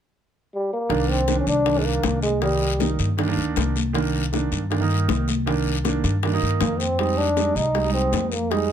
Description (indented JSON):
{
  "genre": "Afro-Cuban jazz",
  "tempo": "158 BPM",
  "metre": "4/4",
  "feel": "straight",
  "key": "C minor",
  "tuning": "A4 = 440 Hz",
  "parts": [
    { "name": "trombone with cup mute", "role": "melody", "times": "0.5-3.0, 6.6-8.7 s", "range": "G3 to Eb4", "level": "-23 LUFS", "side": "equal", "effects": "plate reverb" },
    { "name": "warm grand piano", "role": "accompaniment", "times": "0.9-8.7 s", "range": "Eb3 to Eb4", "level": "-25 LUFS", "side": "right 5 dB", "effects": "none" },
    { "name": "upright bass", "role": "bass", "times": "0.9-8.7 s", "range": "C2 to G2", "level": "-24 LUFS", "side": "left 1 dB", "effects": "none" },
    { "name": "bongos", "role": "percussion", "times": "0.9-8.7 s", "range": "none", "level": "-30 LUFS", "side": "left 9 dB", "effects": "none" },
    { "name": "congas", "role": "percussion", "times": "0.9-8.7 s", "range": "none", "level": "-31 LUFS", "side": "left 4 dB", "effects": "none" },
    { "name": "guiro", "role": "percussion", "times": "0.9-8.7 s", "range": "none", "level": "-34 LUFS", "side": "left 8 dB", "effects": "none" }
  ],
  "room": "light reverb",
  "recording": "none",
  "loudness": "-20 LUFS",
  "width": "side -9 dB against mid",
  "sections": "0.9-8.7 A section",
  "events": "none",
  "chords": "0.0 N.C.; 0.9 Cm9; 7.0 Fm9",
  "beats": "0.14 0.52 | 0.90 1.28 1.66 2.04 | 2.42 2.81 3.19 3.57 | 3.95 4.33 4.71 5.09 | 5.47 5.85 6.23 6.61 | 6.99 7.37 7.75 8.13 | 8.51"
}